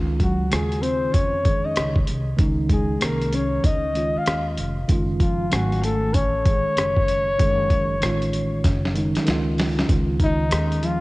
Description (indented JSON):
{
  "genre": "hip hop, jazz-hop",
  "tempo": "96 BPM",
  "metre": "4/4",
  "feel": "swing 64% on 16ths",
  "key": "Db major",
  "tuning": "A4 = 440 Hz",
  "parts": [
    { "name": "mellow tine electric piano", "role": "accompaniment", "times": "0.0-11.0 s", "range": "Db3 to Ab5", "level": "-26 LUFS", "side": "right 1 dB", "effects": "medium stereo tremolo, cassette tape" },
    { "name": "upright bass", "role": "bass", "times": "0.0-11.0 s", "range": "F1 to F2", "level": "-26 LUFS", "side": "equal", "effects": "none" },
    { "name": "breathy flugelhorn", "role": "melody", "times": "0.2-11.0 s", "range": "Eb4 to F5", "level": "-25 LUFS", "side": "left 1 dB", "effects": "cassette tape, analog delay" },
    { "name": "mellow electric guitar", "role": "second line", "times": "0.2-11.0 s", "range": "Eb3 to F4", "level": "-29 LUFS", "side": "left 2 dB", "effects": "wide subtle chorus, cassette tape, analog delay" },
    { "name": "dusty soul sampler-style drum kit", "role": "drums", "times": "0.2-11.0 s", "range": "hi-hat, kick drum, rim click, snare drum", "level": "-22 LUFS", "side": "equal", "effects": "cassette tape" }
  ],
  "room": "light reverb",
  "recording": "home recording on cassette",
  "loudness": "-19 LUFS",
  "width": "side -21 dB against mid",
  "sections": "0.0-9.9 A section; 9.9-11.0 A section",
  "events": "drum fill 8.6-9.9",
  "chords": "0.0 Dbadd9; 4.9 Gbm6; 9.3 Dbadd9"
}